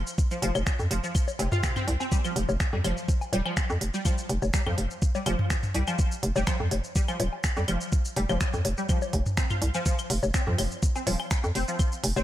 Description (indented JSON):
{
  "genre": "minimal techno",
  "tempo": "124 BPM",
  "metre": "4/4",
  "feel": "swing 53% on 16ths",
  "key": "unclear",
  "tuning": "A4 = 439 Hz",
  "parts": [
    { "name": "hollow knocking FM bass", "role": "bass", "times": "0.0-12.2 s", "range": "Eb1 to F2", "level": "-27 LUFS", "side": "equal", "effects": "sidechain pumping" },
    { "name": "minimal click drum kit", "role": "drums", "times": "0.1-12.2 s", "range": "finger snaps, hi-hat, shaker", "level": "-33 LUFS", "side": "right 1 dB", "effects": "none" },
    { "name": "electronic kick drum", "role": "drums", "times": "0.2-11.9 s", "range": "none", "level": "-26 LUFS", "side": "equal", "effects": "overdrive" },
    { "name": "resonant blip pluck", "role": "riff", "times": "0.3-12.2 s", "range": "C3 to F4", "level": "-32 LUFS", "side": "equal", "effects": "ensemble chorus, sidechain pumping, analog delay" },
    { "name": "electronic woodblock, bongos, claves and toms", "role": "percussion", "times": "0.4-12.2 s", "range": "none", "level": "-33 LUFS", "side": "left 2 dB", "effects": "overdrive, analog delay" }
  ],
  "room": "light reverb, digital ambience",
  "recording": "none",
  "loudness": "-24 LUFS",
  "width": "side -13 dB against mid",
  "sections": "0.0-12.2 A section",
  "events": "none",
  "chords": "0.0 F5"
}